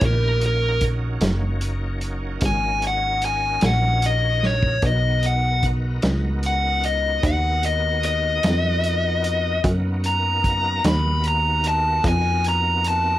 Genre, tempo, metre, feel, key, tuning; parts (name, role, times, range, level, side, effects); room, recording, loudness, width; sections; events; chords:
slow blues; 50 BPM (dotted quarters); 12/8; straight; A4 = 440 Hz
smooth overdriven lead guitar; melody; 0.0-13.2 s; Bb4 to B5; -21 LUFS; left 2 dB
bright tonewheel organ; sustained chords; 0.0-13.2 s; Bb3 to A#4; -32 LUFS; right 1 dB; slow rotary speaker, chorus vibrato
plucky analog bass; bass; 0.0-13.2 s; Gb1 to F#2; -22 LUFS; equal
vintage drum kit; drums; 0.0-13.0 s; hi-hat, kick drum, snare drum; -25 LUFS; right 1 dB
light reverb; -18 LUFS; side -14 dB against mid
0.0-13.2 A section
drum fill 4.4-4.8
0.0 Ebm7; 4.8 Bmaj7